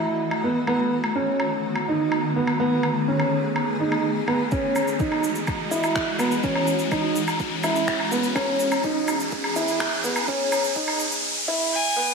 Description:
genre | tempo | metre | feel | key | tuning
piano and strings electronica | 125 BPM | 4/4 | straight | unclear | A4 = 436 Hz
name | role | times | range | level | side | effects
granular cloud pad | sustained chords | 0.0-11.2 s | D#3 to D#5 | -28 LUFS | left 1 dB | built-in reverb
warm concert grand piano | riff | 0.0-12.1 s | B3 to E4 | -24 LUFS | right 2 dB | digital delay
riser | sound effects | 0.5-12.1 s | none | -30 LUFS | equal | none
electronic woodblock, shaker and finger snaps | drums | 0.3-11.2 s | none | -28 LUFS | equal | overdrive
electronic kick drum | drums | 4.5-10.9 s | none | -30 LUFS | left 1 dB | overdrive
rich violin | melody | 11.7-12.1 s | G#5 | -22 LUFS | right 1 dB | none
room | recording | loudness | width
wet recital hall reverb, RT60 1.5 s, digital ambience | high-pass filter | -21 LUFS | side -4 dB against mid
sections
0.0-12.1 A section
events
build-up 0.0-12.1; filter sweep 0.0-12.1; riser 0.5-12.1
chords
0.0 F#m7; 0.7 B7; 4.5 Emaj9; 8.4 C#m7

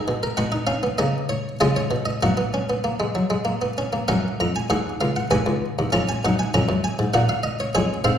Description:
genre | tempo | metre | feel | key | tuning
classical, baroque-style 4-part fugue for harpsichord | 98 BPM | 3/4 | straight | F# major | A4 = 439 Hz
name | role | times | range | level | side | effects
buff-stop harpsichord | solo | 0.0-8.2 s | C#2 to A#5 | -20 LUFS | equal | none
room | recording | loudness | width
wet recital hall reverb, RT60 1.3 s | heard from further back in the room | -20 LUFS | side -9 dB against mid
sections
0.0-4.1 A section; 4.1-8.2 B section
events
none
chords
0.4 Badd9; 1.0 F#/C#; 1.6 C#7; 2.2 F#; 5.3 B; 5.9 C#/E#; 7.1 F#/A#

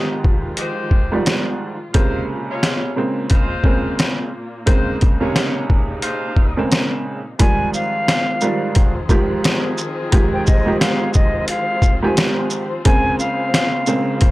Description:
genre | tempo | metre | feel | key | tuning
hip hop, boom-bap hip-hop | 88 BPM | 4/4 | swing 58% on 16ths | F minor | A4 = 440 Hz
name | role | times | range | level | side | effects
clear upright piano | accompaniment | 0.0-14.3 s | Ab2 to G4 | -21 LUFS | right 2 dB | cassette tape, high-pass filter, low-pass filter
warm studio string section | sustained chords | 0.0-14.3 s | Bb2 to C5 | -29 LUFS | left 2 dB | high-pass filter, low-pass filter
clear saxophone section | stabs | 0.0-14.3 s | Eb3 to Eb5 | -28 LUFS | left 2 dB | high-pass filter, low-pass filter, analog delay
trip hop sampler-style drum kit | drums | 0.2-14.3 s | hi-hat, kick drum, shaker, snare drum | -16 LUFS | equal | none
breathy bright concert flute | melody | 7.4-14.3 s | Eb5 to Ab5 | -22 LUFS | equal | high-pass filter, low-pass filter, analog delay
room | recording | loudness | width
little or no reverb | dry, gritty hardware recording | -15 LUFS | side -18 dB against mid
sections
0.0-7.4 A section; 7.4-14.3 B section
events
none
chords
0.0 Fm9; 1.9 Bbm9; 7.4 Fm9; 12.9 Bbm9

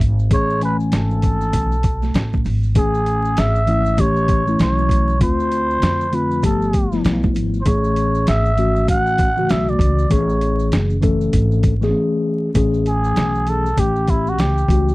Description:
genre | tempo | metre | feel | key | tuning
hip hop, jazz-hop | 98 BPM | 4/4 | swing 62% on 16ths | A major | A4 = 440 Hz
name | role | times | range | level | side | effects
upright bass | bass | 0.0-14.9 s | F#1 to F2 | -20 LUFS | equal | none
lo-fi sampler-style drum kit | drums | 0.0-14.9 s | hi-hat, kick drum, snare drum | -19 LUFS | equal | none
congas and maracas | percussion | 0.0-14.9 s | none | -34 LUFS | right 7 dB | none
trumpet with cup mute | melody | 0.3-14.9 s | E4 to F#5 | -21 LUFS | right 1 dB | none
mellow tine electric piano | accompaniment | 0.3-14.9 s | C#3 to G#5 | -20 LUFS | left 2 dB | slow stereo tremolo
room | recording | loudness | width
little or no reverb | dry, close 1970s-style studio recording, vinyl crackle | -15 LUFS | side -20 dB against mid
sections
0.0-2.8 A section; 2.8-12.6 B section; 12.6-14.9 C section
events
break 11.9-12.6; muted trumpet solo 12.6-14.9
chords
0.0 Amaj7; 4.0 A7; 5.2 Dm7; 6.4 G9; 7.7 Amaj7; 13.8 A7

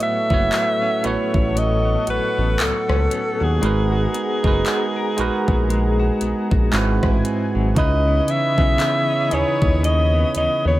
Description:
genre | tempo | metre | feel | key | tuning
contemporary R&B | 58 BPM | 4/4 | swing 58% on 16ths | unclear | A4 = 444 Hz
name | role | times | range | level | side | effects
breathy alto saxophone | melody | 0.0-10.8 s | G#4 to E5 | -22 LUFS | equal | digital delay
bell-like tine electric piano | accompaniment | 0.0-10.8 s | G#2 to C#5 | -23 LUFS | right 4 dB | none
warm analog pad | sustained chords | 0.0-10.8 s | G#4 to D#6 | -30 LUFS | left 1 dB | chorus
direct-recorded clean electric guitar | arpeggios | 0.0-10.8 s | G#2 to A#4 | -28 LUFS | left 6 dB | tremolo
smooth R&B drum kit | drums | 0.0-10.6 s | handclaps, hi-hat, kick drum, rim click | -21 LUFS | equal | none
smooth synth bass | bass | 0.3-10.8 s | F#1 to D#2 | -20 LUFS | equal | none
room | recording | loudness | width
little or no reverb | none | -16 LUFS | side -16 dB against mid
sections
0.0-10.8 A section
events
none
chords
0.0 A69; 3.6 G#m9; 6.7 G#7alt; 7.8 C#m9

